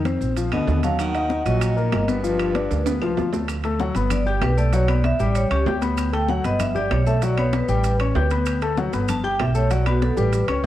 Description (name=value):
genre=Afro-Cuban jazz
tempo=193 BPM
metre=4/4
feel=straight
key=D major from 3.5 s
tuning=A4 = 439 Hz
part: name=upright bass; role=bass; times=0.0-10.7 s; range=G1 to E#2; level=-22 LUFS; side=right 1 dB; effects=none
part: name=warm concert grand piano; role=accompaniment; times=0.1-10.7 s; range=D3 to G6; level=-24 LUFS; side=left 5 dB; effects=cassette tape
part: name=congas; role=percussion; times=0.1-10.6 s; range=none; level=-32 LUFS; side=left 6 dB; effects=none
part: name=maracas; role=percussion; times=0.1-10.6 s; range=none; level=-43 LUFS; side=right 10 dB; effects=none
part: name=timbales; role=percussion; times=0.1-10.7 s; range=none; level=-32 LUFS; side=right 8 dB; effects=none
part: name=vibraphone with medium hard mallets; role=melody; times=0.5-10.6 s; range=F#4 to A5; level=-26 LUFS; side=right 1 dB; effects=cassette tape
part: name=breathy baritone saxophone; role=second line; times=0.5-3.1 s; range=G2 to D#3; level=-31 LUFS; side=right 6 dB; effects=cassette tape, analog delay
part: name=claves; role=percussion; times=0.5-10.6 s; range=none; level=-39 LUFS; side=left 7 dB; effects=none
room=light reverb, small room ambience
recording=home recording on cassette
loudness=-19 LUFS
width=side -13 dB against mid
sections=0.0-3.5 A section; 3.5-10.7 B section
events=drum fill 2.7-3.5; vibraphone solo 3.5-10.7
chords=0.4 A#; 1.0 D#m; 2.2 G7; 3.5 D6; 4.1 Gadd9; 4.7 B5; 5.4 A7; 6.0 D6; 6.6 Gadd9; 7.2 B5; 7.8 A7; 8.5 D6; 9.1 Gadd9; 9.7 B5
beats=0.06 0.37 0.68 | 0.99 1.30 1.62 1.93 | 2.24 2.55 2.86 3.17 | 3.48 3.80 4.11 4.42 | 4.73 5.04 5.35 5.66 | 5.97 6.29 6.60 6.91 | 7.22 7.53 7.84 8.15 | 8.46 8.77 9.08 9.39 | 9.71 10.02 10.33 10.64